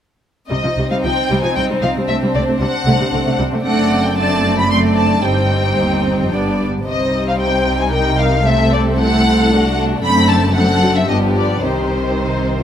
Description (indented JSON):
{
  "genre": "quick classical-period movement for symphony orchestra",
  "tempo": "113 BPM",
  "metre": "3/4",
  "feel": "rubato",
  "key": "C minor",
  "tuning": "A4 = 440 Hz",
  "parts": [
    { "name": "warm studio violin section", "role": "melody", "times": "0.5-12.6 s", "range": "C5 to C6", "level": "-19 LUFS", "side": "left 2 dB", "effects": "none" },
    { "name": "warm chamber violin section", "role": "second line", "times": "0.5-12.6 s", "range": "C4 to D5", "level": "-21 LUFS", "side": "left 3 dB", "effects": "none" },
    { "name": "rich studio viola section", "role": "accompaniment", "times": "0.5-12.6 s", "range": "Eb3 to Eb4", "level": "-19 LUFS", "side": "right 2 dB", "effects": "none" },
    { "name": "dark studio cello section", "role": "bass", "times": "0.5-12.6 s", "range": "Eb2 to C3", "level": "-21 LUFS", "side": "equal", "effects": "none" },
    { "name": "warm studio double bass section", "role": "bass", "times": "0.5-12.6 s", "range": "F#1 to C2", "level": "-22 LUFS", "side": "right 1 dB", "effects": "none" }
  ],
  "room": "moderate scoring stage reverb, RT60 1.6 s",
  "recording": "close, detailed microphones",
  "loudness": "-13 LUFS",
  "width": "side -9 dB against mid",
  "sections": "0.5-12.6 A section",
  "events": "none",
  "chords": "0.5 Cm; 2.1 D7/C; 3.6 D7/F#; 5.2 Cm/G; 6.3 G; 6.9 Cm; 8.5 D7/C; 10.0 D7/F#; 11.1 G7; 11.6 Cm"
}